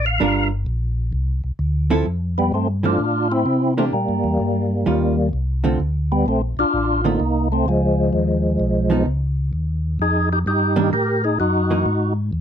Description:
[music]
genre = jazz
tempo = 129 BPM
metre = 4/4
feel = swing 66% on 8ths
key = unclear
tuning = A4 = 441 Hz
[part]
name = percussive tonewheel organ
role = melody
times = 0.0-12.1 s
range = F3 to F5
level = -19 LUFS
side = equal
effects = slow rotary speaker, overdrive, chorus vibrato
[part]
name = mellow tonewheel organ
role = bass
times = 0.0-12.4 s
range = G1 to C3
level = -21 LUFS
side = equal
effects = chorus vibrato, slow rotary speaker
[part]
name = hollow-body jazz guitar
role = accompaniment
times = 0.2-11.8 s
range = D3 to Bb4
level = -20 LUFS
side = right 3 dB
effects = none
[sound]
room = light reverb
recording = close, detailed microphones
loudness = -17 LUFS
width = side -8 dB against mid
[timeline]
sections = 0.0-2.1 A section; 2.1-12.4 B section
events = tonewheel organ solo 0.0-2.1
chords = 0.2 Gm7; 1.1 C69; 2.1 Fmaj7; 3.9 Edim; 4.9 Eb9; 5.8 Dm7; 7.7 Db9; 9.5 Eb; 11.4 Gb13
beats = | 0.20 0.66 1.13 1.59 | 2.06 2.52 2.99 3.46 | 3.92 4.39 4.86 5.33 | 5.79 6.26 6.73 7.19 | 7.66 8.13 8.59 9.06 | 9.53 9.99 10.46 10.93 | 11.39 11.86 12.33

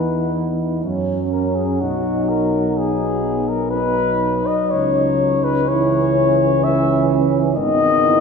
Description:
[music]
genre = classical, hymn-like piece for brass band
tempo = 62 BPM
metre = 3/4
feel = rubato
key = unclear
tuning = A4 = 438 Hz
[part]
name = mellow flugelhorn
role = melody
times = 0.0-8.2 s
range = F#4 to E5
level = -19 LUFS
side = left 6 dB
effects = none
[part]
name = mellow French horn section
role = second line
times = 0.0-8.2 s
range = B3 to E4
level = -22 LUFS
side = right 6 dB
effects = none
[part]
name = warm euphonium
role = accompaniment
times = 0.0-8.2 s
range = B3 to D#4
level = -25 LUFS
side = left 4 dB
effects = none
[part]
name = warm euphonium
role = accompaniment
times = 0.0-8.2 s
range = D#3 to B3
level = -24 LUFS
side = right 3 dB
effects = none
[part]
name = mellow tuba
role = bass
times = 0.0-8.2 s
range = G#1 to F#2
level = -23 LUFS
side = right 2 dB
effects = none
[sound]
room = wet concert hall reverb, RT60 2.4 s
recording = heard from further back in the room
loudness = -16 LUFS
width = side -5 dB against mid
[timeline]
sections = 0.0-8.2 A section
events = none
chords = 0.0 E5; 0.8 F#5; 1.8 B; 4.7 C#m; 7.6 G#m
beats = 0.84 | 1.82 2.79 3.74 | 4.72 5.67 6.63 | 7.58

